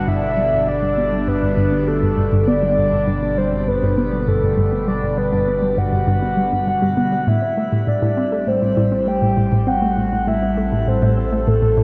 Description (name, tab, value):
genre	ambient, sequencer-driven space music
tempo	100 BPM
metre	4/4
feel	straight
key	G major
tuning	A4 = 440 Hz
part	soft octave-layered synth lead	melody	0.0-11.8 s	A4 to G5	-23 LUFS	equal	chorus, phaser, shimmer reverb, tape echo
part	phased analog pad	sustained chords	0.0-11.8 s	B2 to E5	-25 LUFS	equal	phaser, chorus, shimmer reverb
part	round analog bass	bass	0.0-11.8 s	G1 to A1	-31 LUFS	equal	none
part	analog pluck	riff	0.1-11.8 s	G2 to C4	-22 LUFS	equal	chorus, tape echo
room	wet lush hall reverb, RT60 2.8 s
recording	dreamy mix soaked in reverb, cassette tape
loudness	-18 LUFS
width	mono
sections	0.0-11.8 A section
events	filter sweep on synth arpeggio sound 0.0-11.8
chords	0.0 Gmaj7; 7.3 Am7